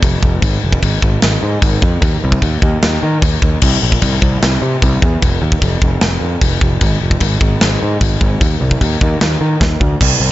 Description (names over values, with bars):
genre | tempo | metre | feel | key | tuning
heavy metal | 150 BPM | 4/4 | straight | unclear | A4 = 438 Hz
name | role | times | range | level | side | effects
fuzz picked electric bass | bass | 0.0-10.3 s | F1 to Eb3 | -15 LUFS | equal | overdrive
tight metal drum kit | drums | 0.0-10.1 s | china cymbal, crash cymbal, kick drum, snare drum | -14 LUFS | equal | none
room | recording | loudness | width
little or no reverb | nothing above 7.7 kHz | -11 LUFS | side -15 dB against mid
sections
0.0-10.0 A section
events
drum fill 9.6-10.0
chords
none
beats
0.04 | 0.43 0.83 1.23 1.63 | 2.03 2.43 2.83 3.23 | 3.63 4.03 4.43 4.83 | 5.23 5.62 6.03 6.42 | 6.82 7.22 7.62 8.02 | 8.42 8.82 9.22 9.62 | 10.02